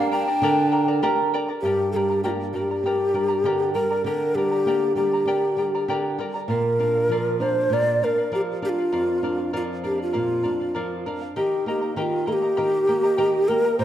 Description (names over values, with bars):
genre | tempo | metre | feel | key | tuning
andean folk, Andean ensemble | 99 BPM | 4/4 | straight | G minor | A4 = 440 Hz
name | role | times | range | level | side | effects
breathy mellow large quena | melody | 0.0-13.8 s | F4 to G5 | -22 LUFS | equal | none
clear violin | second line | 0.0-1.0 s | Bb3 to D4 | -28 LUFS | right 3 dB | none
charango | accompaniment | 0.0-13.8 s | G4 to Bb5 | -29 LUFS | equal | none
flamenco guitar | accompaniment | 0.0-13.8 s | F2 to Bb4 | -28 LUFS | right 2 dB | none
room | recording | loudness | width
wet scoring stage reverb, RT60 1.7 s | dark, warm production | -20 LUFS | side -11 dB against mid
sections
0.0-1.6 A section; 1.6-13.8 B section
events
none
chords
0.0 Gm; 6.5 Bb; 11.4 Eb